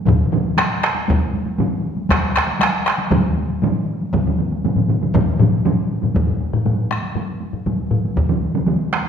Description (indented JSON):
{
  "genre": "japanese traditional, taiko drum ensemble",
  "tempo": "119 BPM",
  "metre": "4/4",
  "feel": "straight",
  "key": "none",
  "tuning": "none",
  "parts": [
    { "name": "taiko ensemble", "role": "percussion", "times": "0.1-9.1 s", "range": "none", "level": "-23 LUFS", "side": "equal", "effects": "none" },
    { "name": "taiko ensemble", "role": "percussion", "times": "0.1-8.0 s", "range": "none", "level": "-21 LUFS", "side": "left 3 dB", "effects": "none" },
    { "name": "taiko ensemble", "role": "percussion", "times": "0.1-9.0 s", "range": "none", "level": "-20 LUFS", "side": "right 3 dB", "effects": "none" },
    { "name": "taiko ensemble", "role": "percussion", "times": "0.1-8.3 s", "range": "none", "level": "-23 LUFS", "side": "equal", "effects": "none" }
  ],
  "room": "wet recital hall reverb, RT60 1.4 s",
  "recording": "recorded in a church or concert hall",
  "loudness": "-16 LUFS",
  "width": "side -7 dB against mid",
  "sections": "0.0-6.2 A section; 6.2-9.1 B section",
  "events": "none",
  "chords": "none",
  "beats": "| 0.07 0.58 1.09 1.60 | 2.10 2.61 3.12 3.63 | 4.13 4.64 5.14 5.65 | 6.15 6.66 7.16 7.67 | 8.17 8.67"
}